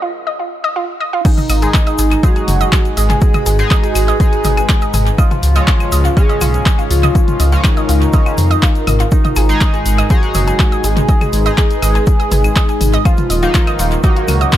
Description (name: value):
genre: melodic techno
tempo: 122 BPM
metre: 4/4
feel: straight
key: G# dorian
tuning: A4 = 440 Hz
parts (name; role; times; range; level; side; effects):
- analog pluck; arpeggios; 0.0-14.6 s; E#4 to D#5; -22 LUFS; right 1 dB; chorus, sidechain pumping, analog delay
- fat analog lead; melody; 1.2-14.6 s; D#4 to G#4; -20 LUFS; equal; lush chorus, cassette tape, sidechain pumping, tape echo
- analog drone; drone; 3.0-14.6 s; G#2; -30 LUFS; equal; none
- electronic kick drum; drums; 1.2-14.6 s; none; -12 LUFS; equal; overdrive
- punchy analog drum machine; drums; 1.2-14.6 s; claves, crash cymbal, handclaps, hi-hat, toms; -21 LUFS; left 2 dB; overdrive, sidechain pumping on hats, sidechain pumping on toms, sidechain pumping on cymbals, sidechain pumping on perc, analog delay
- ethereal airy pad; texture; 2.9-14.6 s; D#4 to C#5; -26 LUFS; equal; ensemble chorus, built-in reverb, phaser, sidechain pumping
- tube shaker; percussion; 1.3-14.6 s; none; -28 LUFS; left 3 dB; none
- dark detuned saw bass; bass; 1.5-14.4 s; D#1 to E#2; -14 LUFS; equal; sidechain pumping
- sync-sweep polysynth; stabs; 1.6-14.6 s; C#3 to G#4; -22 LUFS; right 1 dB; chorus, phaser, sidechain pumping, analog delay
room: digital ambience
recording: echo-heavy mix, high-pass filter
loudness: -11 LUFS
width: side -12 dB against mid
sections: 0.0-1.2 A section; 1.2-14.6 B section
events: break 0.0-1.2; build-up 0.0-1.2; filter sweep on synth arpeggio sound 0.0-1.2; filter sweep 0.0-1.2; drop 1.2-14.6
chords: 0.0 C#add9 (rootless); 1.2 G#m; 5.2 C#add9; 9.1 G#m; 13.1 D#madd9